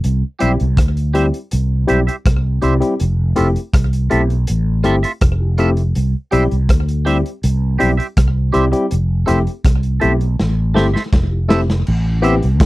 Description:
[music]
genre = lovers rock reggae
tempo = 81 BPM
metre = 4/4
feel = straight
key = C major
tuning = A4 = 439 Hz
[part]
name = fretless electric bass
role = bass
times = 0.0-12.7 s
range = F1 to E2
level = -16 LUFS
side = equal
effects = lush chorus
[part]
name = crunchy breakbeat drum kit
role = drums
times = 0.0-12.7 s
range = crash cymbal, hi-hat, kick drum, rim click, snare drum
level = -16 LUFS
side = equal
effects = slapback echo
[part]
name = barky tine electric piano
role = accompaniment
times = 0.4-12.4 s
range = G3 to G4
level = -17 LUFS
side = left 2 dB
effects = overdrive, slapback echo
[part]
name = twangy electric guitar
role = stabs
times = 0.4-12.3 s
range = F4 to E5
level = -20 LUFS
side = right 4 dB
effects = phaser
[sound]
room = little or no reverb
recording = dry, close 1970s-style studio recording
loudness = -14 LUFS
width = side -18 dB against mid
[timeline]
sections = 0.0-11.9 A section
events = drum fill 10.4-11.9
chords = 0.0 C; 3.0 Fmaj7; 5.9 C; 8.9 Fmaj7; 11.9 Am7

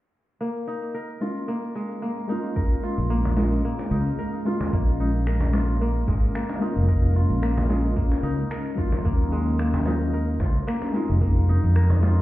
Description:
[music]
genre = organic downtempo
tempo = 111 BPM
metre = 4/4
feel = swing 54% on 16ths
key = Bb minor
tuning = A4 = 442 Hz
[part]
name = granular cloud pad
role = sustained chords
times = 1.7-12.2 s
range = Gb3 to F5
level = -31 LUFS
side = left 1 dB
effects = built-in reverb, sidechain pumping
[part]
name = kora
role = arpeggios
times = 0.4-12.2 s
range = Ab3 to Bb4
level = -31 LUFS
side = equal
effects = low-pass filter, tape echo
[part]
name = electronic shaker and finger snaps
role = drums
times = 0.4-12.2 s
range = none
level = -43 LUFS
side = equal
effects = studio reverb
[part]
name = bronze singing bowl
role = texture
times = 0.4-12.2 s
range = Bb4 to Eb5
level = -43 LUFS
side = left 4 dB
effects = none
[part]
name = felt-muted upright piano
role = accompaniment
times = 1.2-12.2 s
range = Gb3 to F4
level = -29 LUFS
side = left 1 dB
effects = sidechain pumping, low-pass filter, tape echo
[part]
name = electronic kick drum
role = drums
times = 2.6-11.3 s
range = none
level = -23 LUFS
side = equal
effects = studio reverb
[part]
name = fretless electric bass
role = bass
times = 3.0-12.2 s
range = F1 to F2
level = -21 LUFS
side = equal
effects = sidechain pumping
[part]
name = cajon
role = percussion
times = 3.3-12.1 s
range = none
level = -32 LUFS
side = equal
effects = none
[sound]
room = light reverb, studio reverb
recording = heard muffled through a wall, club ambience, EQ, nothing above 10.7 kHz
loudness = -21 LUFS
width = side -16 dB against mid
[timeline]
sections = 0.4-4.7 A section; 4.7-12.2 B section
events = filter sweep on felt piano 0.4-4.7, 4.7-12.2; filter sweep on ambient pad 0.4-4.7; break 3.6-4.7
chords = 0.4 Bbm7; 9.1 Ebm7; 11.2 Fm7

